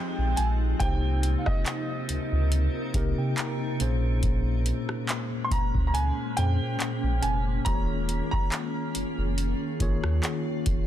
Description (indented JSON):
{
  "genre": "contemporary R&B",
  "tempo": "70 BPM",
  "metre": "4/4",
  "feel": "swing 54% on 16ths",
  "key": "unclear",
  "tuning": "A4 = 444 Hz",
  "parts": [
    { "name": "warm baby grand piano", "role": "melody", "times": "0.0-10.0 s", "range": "Eb5 to C6", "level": "-33 LUFS", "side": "right 2 dB", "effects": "digital delay" },
    { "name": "mellow tine electric piano", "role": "accompaniment", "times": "0.0-10.9 s", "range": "Bb2 to Bb5", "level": "-32 LUFS", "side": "left 1 dB", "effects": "medium stereo tremolo" },
    { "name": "granular cloud pad", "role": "sustained chords", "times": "0.0-10.9 s", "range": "C3 to Bb4", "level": "-34 LUFS", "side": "equal", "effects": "built-in reverb, sidechain pumping" },
    { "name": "sub bass with octave", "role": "bass", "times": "0.2-10.9 s", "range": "Eb1 to C3", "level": "-26 LUFS", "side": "equal", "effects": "none" },
    { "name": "booming analog drum machine", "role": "drums", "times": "0.4-10.9 s", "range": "handclaps, hi-hat, kick drum, rim click", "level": "-28 LUFS", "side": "equal", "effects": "none" }
  ],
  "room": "little or no reverb",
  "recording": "dense, heavily limited modern master",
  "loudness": "-24 LUFS",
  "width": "side -11 dB against mid",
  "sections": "0.0-10.9 A section",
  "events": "tine electric piano fill 2.5-4.2",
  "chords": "0.0 Fm9; 0.8 Cm7; 3.8 Bbm9; 7.7 Eb9sus4",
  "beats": "| 0.80 1.66 2.52 3.37 | 4.23 5.09 5.95 6.80 | 7.66 8.52 9.37 10.23"
}